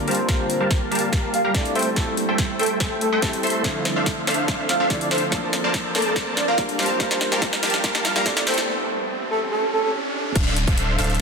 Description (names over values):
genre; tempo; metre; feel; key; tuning
future bass; 143 BPM; 4/4; half-time; D minor; A4 = 440 Hz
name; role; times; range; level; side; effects
felt-muted upright piano; accompaniment; 0.0-8.7 s; D3 to Bb4; -30 LUFS; equal; sidechain pumping, dub echo
ethereal airy pad; sustained chords; 0.0-11.2 s; D3 to Bb4; -32 LUFS; equal; ensemble chorus, built-in reverb, phaser, sidechain pumping
breathy flute-like synth lead; melody; 0.1-9.9 s; A4 to F5; -25 LUFS; right 1 dB; wide subtle chorus, sidechain pumping, dub echo
supersaw stab; riff; 0.1-11.2 s; G3 to C6; -25 LUFS; equal; sidechain pumping, low-pass filter, dub echo
trap drum kit; drums; 0.1-11.2 s; crash cymbal, hi-hat, snare drum; -25 LUFS; left 1 dB; overdrive, high-pass filter on hats, high-pass filter on snare, high-pass filter on cymbals
electronic kick drum; drums; 0.3-10.8 s; none; -24 LUFS; equal; overdrive
riser and downlifter; sound effects; 6.1-11.2 s; none; -31 LUFS; right 1 dB; none
saturated sub bass; bass; 10.4-11.2 s; D1; -23 LUFS; equal; sidechain pumping
room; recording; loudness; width
moderate lush hall reverb, RT60 2.1 s; dense, heavily limited modern master, high-pass filter; -19 LUFS; side -5 dB against mid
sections
0.0-10.4 A section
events
build-up 0.0-10.4; drum fill 0.0-8.7; filter sweep on supersaw synth 0.0-10.4; riser 6.1-10.4; break 8.7-10.4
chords
0.1 Gm7; 1.8 Am7; 3.6 Dm9; 5.3 Bbmaj9; 6.8 Gm7; 8.5 Am7; 10.4 Dm9